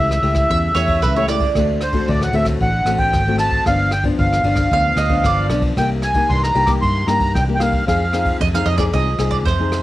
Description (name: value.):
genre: samba and choro.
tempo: 114 BPM.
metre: 4/4.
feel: straight.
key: unclear.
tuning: A4 = 440 Hz.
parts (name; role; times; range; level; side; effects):
accordion; melody; 0.0-8.4 s; C5 to D6; -19 LUFS; equal; light tremolo tuning.
nylon-string guitar; accompaniment; 0.0-9.8 s; G2 to Ab4; -23 LUFS; left 5 dB; cassette tape.
vintage muted fingered electric bass; bass; 0.0-9.8 s; G1 to G2; -20 LUFS; equal; none.
jazz brush drum kit; drums; 0.1-9.8 s; kick drum, ride cymbal, rim click; -23 LUFS; equal; cassette tape.
mandolin; second line; 0.5-9.8 s; B4 to F5; -22 LUFS; right 7 dB; cassette tape.
room: light reverb, studio reverb.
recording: home recording on cassette.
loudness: -15 LUFS.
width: side -16 dB against mid.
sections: 0.0-9.8 A section.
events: none.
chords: 0.0 A7/C#; 1.6 D7; 3.7 G7; 5.8 Cm7; 7.9 Fm7.